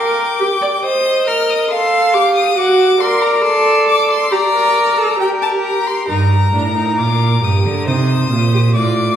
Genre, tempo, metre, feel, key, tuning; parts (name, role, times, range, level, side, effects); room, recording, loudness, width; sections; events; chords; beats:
classical, baroque-style fugue for string quartet; 68 BPM; 4/4; straight; G minor; A4 = 439 Hz
rich violin; melody; 0.0-9.2 s; G5 to F6; -19 LUFS; left 6 dB
rich violin; second line; 0.0-9.2 s; Bb4 to G5; -18 LUFS; equal
clear viola; accompaniment; 0.0-9.2 s; D4 to D5; -17 LUFS; right 2 dB
rich cello; bass; 6.1-9.2 s; G2 to D3; -14 LUFS; right 2 dB
wet recital hall reverb, RT60 1.7 s; heard from further back in the room; -12 LUFS; side -9 dB against mid
0.0-6.1 A section; 6.1-9.2 B section
0.0 Gm; 0.8 Cm; 2.6 D7/F#; 4.3 Gm; 6.1 Eb/G; 7.9 Adim
0.84 1.71 | 2.57 3.44 4.32 5.20 | 6.09 6.99 7.87 8.75